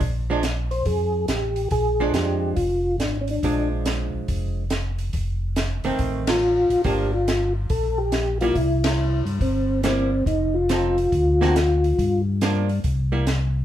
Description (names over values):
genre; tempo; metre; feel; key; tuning
soul jazz organ trio; 140 BPM; 4/4; swing 66% on 8ths; unclear; A4 = 444 Hz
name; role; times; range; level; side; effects
mellow tonewheel organ; bass; 0.0-13.6 s; F1 to G2; -24 LUFS; equal; overdrive, chorus vibrato, slow rotary speaker
compact cocktail drum kit; drums; 0.0-13.4 s; hi-hat, kick drum, ride cymbal, snare drum; -28 LUFS; right 1 dB; none
archtop guitar, miked and amplified; accompaniment; 0.3-13.3 s; D3 to A4; -27 LUFS; right 3 dB; none
percussive tonewheel organ; melody; 0.7-3.7, 6.3-12.2 s; C4 to C5; -22 LUFS; left 1 dB; slow rotary speaker, chorus vibrato
room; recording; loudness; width
moderate club reverb, RT60 0.9 s; heard from further back in the room; -20 LUFS; side -11 dB against mid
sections
0.0-13.6 A section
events
band accent 6.2, 8.8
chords
0.0 Bb7; 5.1 F7; 6.8 Gm7; 8.6 C7; 10.3 F7; 11.1 D7alt; 12.0 Gm7; 12.8 C7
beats
| 0.00 0.43 0.86 1.29 | 1.71 2.14 2.57 3.00 | 3.42 3.85 4.28 4.71 | 5.13 5.56 5.99 6.42 | 6.85 7.27 7.70 8.13 | 8.56 8.98 9.41 9.84 | 10.27 10.70 11.12 11.55 | 11.98 12.41 12.83 13.26